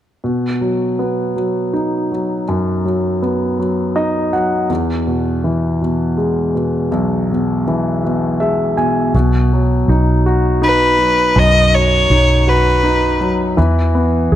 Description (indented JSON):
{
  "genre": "pop",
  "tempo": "54 BPM (dotted quarters)",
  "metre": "6/8",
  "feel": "straight",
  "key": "B major",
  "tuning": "A4 = 440 Hz",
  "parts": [
    { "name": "warm concert grand piano", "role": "accompaniment", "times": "0.2-14.4 s", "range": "B1 to G#5", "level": "-16 LUFS", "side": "equal", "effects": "none" },
    { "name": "vintage muted fingered electric bass", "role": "bass", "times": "9.1-14.4 s", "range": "B1 to E2", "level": "-15 LUFS", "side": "equal", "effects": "none" },
    { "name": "warm violin", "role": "melody", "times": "10.6-13.3 s", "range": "B4 to D#5", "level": "-13 LUFS", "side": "equal", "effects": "none" }
  ],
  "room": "moderate echo chamber reverb, RT60 2.3 s",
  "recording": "none",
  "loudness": "-13 LUFS",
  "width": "side -12 dB against mid",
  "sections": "0.2-9.1 A section; 9.1-14.4 B section",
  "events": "grand piano fill 3.6-4.7, 8.0-9.1",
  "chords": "0.2 B; 4.7 E; 9.1 B; 13.6 E5"
}